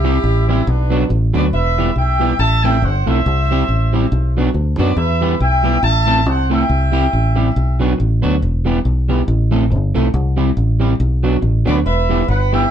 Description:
ska; 139 BPM; 4/4; swing 57% on 8ths; E minor; A4 = 445 Hz
mellow horn section; melody; 0.0-7.8, 11.7-12.7 s; B3 to A5; -19 LUFS; right 1 dB
electric guitar at the edge of break-up; accompaniment; 0.0-12.7 s; F#3 to A4; -20 LUFS; right 2 dB
fingered electric bass; bass; 0.0-12.6 s; E1 to F#2; -15 LUFS; equal
moderate small room reverb, RT60 0.6 s; band playing live in one room; -13 LUFS; side -9 dB against mid
0.0-1.5 A section; 1.5-12.7 A section
0.0 C; 0.7 Bm; 1.5 Em; 2.4 Am; 3.2 C; 4.1 Bm; 5.0 Em; 5.8 Am; 6.7 C; 7.6 Bm; 8.4 Em; 9.3 Am; 10.1 C; 11.0 Bm; 11.9 Em

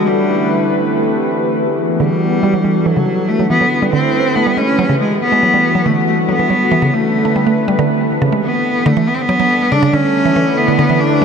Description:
IDM; 140 BPM; 4/4; straight; E minor; A4 = 440 Hz
clear cello; melody; 0.0-11.2 s; F#3 to D4; -15 LUFS; left 1 dB; vintage 12-bit sampler grit, dub echo
warbly tape-like pad; sustained chords; 0.0-11.2 s; D3 to B4; -16 LUFS; equal; chorus, built-in reverb
mallet-like synth pluck; arpeggios; 2.0-11.2 s; C#3 to A3; -18 LUFS; right 3 dB; chorus, tape echo
moderate huge ambient reverb, RT60 8.0 s; -12 LUFS; side -6 dB against mid
0.0-2.0 A section; 2.0-8.9 B section; 8.9-11.2 C section
filter sweep on synth arpeggio sound 2.0-8.9
0.3 Am11; 1.1 F#m11; 2.0 Em11; 2.9 Bm11; 3.7 Am11; 4.6 F#m11; 5.4 Em11; 6.3 Bm11; 7.1 Am11; 8.0 F#m11 (rootless); 8.9 Em11 (rootless); 9.7 Bm11; 10.6 Am11

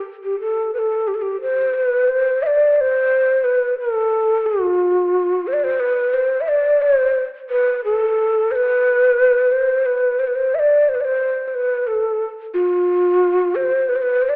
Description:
persian; 59 BPM (dotted quarters); 6/8; straight; A4 = 440 Hz
breathy mellow ney; solo; 0.2-14.4 s; F4+41c to E5; -15 LUFS; equal
moderate recital hall reverb, RT60 1.6 s; telephone sound; -15 LUFS; side -30 dB against mid
0.0-2.8 A section; 2.8-14.4 B section

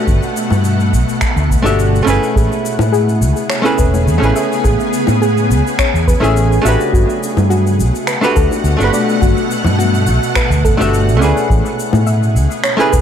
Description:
sunset chillout; 105 BPM; 4/4; straight; A major; A4 = 437 Hz
archtop guitar, miked and amplified; accompaniment; 0.0-13.0 s; A3 to E5; -17 LUFS; right 1 dB; auto-pan, tape echo
shimmering ambient pad; sustained chords; 0.0-13.0 s; B2 to F#5; -19 LUFS; left 1 dB; chorus, built-in reverb
fretless electric bass; bass; 0.1-13.0 s; E1 to A2; -14 LUFS; equal; lush chorus
cabasa and finger snaps; drums; 0.1-13.0 s; -24 LUFS; equal
electronic kick drum; drums; 0.1-13.0 s; -15 LUFS; equal
bongos; percussion; 0.5-12.0 s; -22 LUFS; left 6 dB
soft round pluck; arpeggios; 2.4-13.0 s; F#4 to E5; -21 LUFS; left 2 dB; chorus, tape echo
light reverb, small room reverb; dark, warm production; -11 LUFS; side -9 dB against mid
0.0-13.0 A section
0.0 Gmaj9; 2.4 Amaj9; 6.9 Gmaj9; 11.5 Amaj9

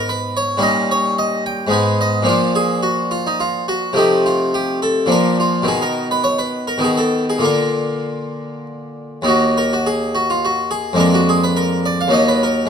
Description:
classical, baroque-style suite movement for harpsichord; 97-110 BPM; 3/4; rubato; Eb minor; A4 = 442 Hz
harpsichord; solo; 0.0-12.7 s; Eb2 to Ab5; -15 LUFS; equal
moderate recital hall reverb, RT60 1.3 s; close, detailed microphones; -15 LUFS; side -7 dB against mid
0.0-9.3 A section; 9.3-12.7 A section
0.0 Abm; 0.6 Eb7/Bb; 1.7 Abm; 2.3 Bb; 4.0 F7/C; 5.1 Bb; 5.7 B7; 7.4 Bb; 9.3 Eb5; 11.0 Bb7/F; 12.1 Ebm

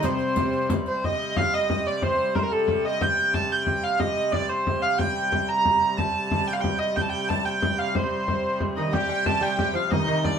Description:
medieval dance; 121 BPM (dotted quarters); 6/8; straight; C dorian; A4 = 441 Hz
rich hurdy-gurdy; melody; 0.0-10.4 s; A4 to Bb5; -24 LUFS; right 2 dB
lute; second line; 0.0-0.7, 8.8-10.4 s; C3 to G3; -29 LUFS; right 2 dB
warm fiddle; second line; 0.0-0.7, 8.8-10.4 s; C4 to G4; -30 LUFS; left 4 dB
clear hurdy-gurdy; drone; 0.0-10.4 s; C3 to G3; -31 LUFS; right 1 dB
frame drum; percussion; 0.0-10.4 s; -28 LUFS; left 2 dB
riq; percussion; 0.0-0.9 s; -35 LUFS; right 5 dB
wet studio ambience, RT60 0.5 s; band playing live in one room; -22 LUFS; side -7 dB against mid
0.0-1.0 A section; 1.0-8.9 B section; 8.9-10.4 B section

